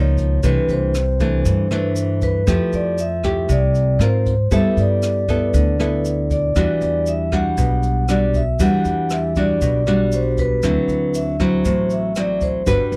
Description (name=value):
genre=bossa nova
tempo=118 BPM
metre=4/4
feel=straight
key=unclear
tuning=A4 = 439 Hz
part: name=vibraphone with medium mallets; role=melody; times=0.0-13.0 s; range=B4 to F#5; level=-25 LUFS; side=equal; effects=none
part: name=nylon-string guitar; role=accompaniment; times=0.0-13.0 s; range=G2 to B4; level=-22 LUFS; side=equal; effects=none
part: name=upright bass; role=bass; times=0.0-13.0 s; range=G1 to Ab2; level=-23 LUFS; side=equal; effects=none
part: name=jazz brush drum kit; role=drums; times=0.2-13.0 s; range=hi-hat, kick drum, rim click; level=-29 LUFS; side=equal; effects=none
part: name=tube shaker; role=percussion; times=0.2-13.0 s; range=none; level=-40 LUFS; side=equal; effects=none
room=little or no reverb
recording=none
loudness=-18 LUFS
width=mono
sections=0.0-13.0 A section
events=none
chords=0.4 C69; 2.5 Fmaj9; 4.0 Ab69; 4.5 G69; 6.6 Em9; 10.6 D9